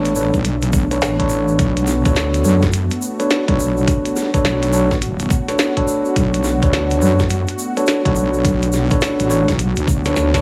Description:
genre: glitch hop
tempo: 105 BPM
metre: 4/4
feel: swing 63% on 16ths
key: B minor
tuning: A4 = 440 Hz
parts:
  - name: warm analog pad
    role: sustained chords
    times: 0.0-10.4 s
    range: A3 to F#4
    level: -27 LUFS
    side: equal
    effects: chorus, sidechain pumping
  - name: mellow tine electric piano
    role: stabs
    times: 0.0-10.4 s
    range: D4 to C#5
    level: -22 LUFS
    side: equal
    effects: sidechain pumping, tape echo
  - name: wobble bass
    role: bass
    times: 0.0-10.4 s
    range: A1 to F#2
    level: -20 LUFS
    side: equal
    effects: chorus, tube saturation
  - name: glitchy drum kit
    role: drums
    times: 0.1-10.4 s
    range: hi-hat, snare drum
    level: -24 LUFS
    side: equal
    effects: none
  - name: egg shaker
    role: percussion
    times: 0.1-10.4 s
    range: none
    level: -34 LUFS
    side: equal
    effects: none
  - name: electronic kick drum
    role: drums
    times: 0.3-10.4 s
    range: none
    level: -22 LUFS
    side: equal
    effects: overdrive
room: little or no reverb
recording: vinyl crackle, small room ambience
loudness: -17 LUFS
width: mono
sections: 0.0-10.4 A section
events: drum fill 10.2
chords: 0.0 Bm9

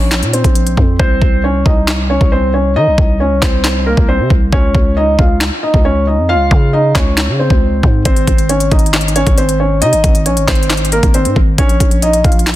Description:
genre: hip hop, trap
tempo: 136 BPM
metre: 4/4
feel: half-time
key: C phrygian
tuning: A4 = 440 Hz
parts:
  - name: felt-muted upright piano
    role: melody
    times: 0.0-12.6 s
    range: Bb3 to F5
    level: -15 LUFS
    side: equal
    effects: low-pass filter, digital delay
  - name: growling 808-style bass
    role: bass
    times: 0.0-12.6 s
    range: Ab1 to Eb3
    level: -15 LUFS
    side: equal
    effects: none
  - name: trap drum kit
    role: drums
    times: 0.1-12.6 s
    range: handclaps, hi-hat, kick drum, snare drum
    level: -12 LUFS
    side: equal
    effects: overdrive
room: light reverb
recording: dense, heavily limited modern master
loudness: -10 LUFS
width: side -14 dB against mid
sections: 0.0-12.6 A section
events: hi-hats muted 1.0-8.1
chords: 0.0 Bbm; 1.0 Cm; 4.5 Dbmaj7; 8.1 Ab; 11.6 Bbm

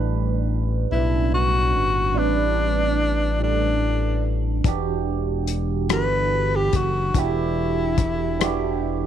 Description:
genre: slow six-eight R&B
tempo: 48 BPM (dotted quarters)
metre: 6/8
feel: straight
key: E minor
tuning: A4 = 443 Hz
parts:
  - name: barky tine electric piano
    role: accompaniment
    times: 0.0-9.1 s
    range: A2 to B4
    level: -26 LUFS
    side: right 11 dB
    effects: phaser
  - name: smooth synth bass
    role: bass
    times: 0.0-9.1 s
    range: E1 to B1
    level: -24 LUFS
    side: left 2 dB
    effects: none
  - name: breathy tenor saxophone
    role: melody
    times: 0.9-9.1 s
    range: D4 to B4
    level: -23 LUFS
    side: left 1 dB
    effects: slapback echo
  - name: warm soul drum kit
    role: drums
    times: 4.6-8.6 s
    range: hi-hat, kick drum, rim click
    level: -22 LUFS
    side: left 5 dB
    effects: none
room: little or no reverb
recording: 1960s-style stereo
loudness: -19 LUFS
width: side -10 dB against mid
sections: 0.0-9.1 A section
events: none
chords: 0.0 A9sus4; 4.7 Em9

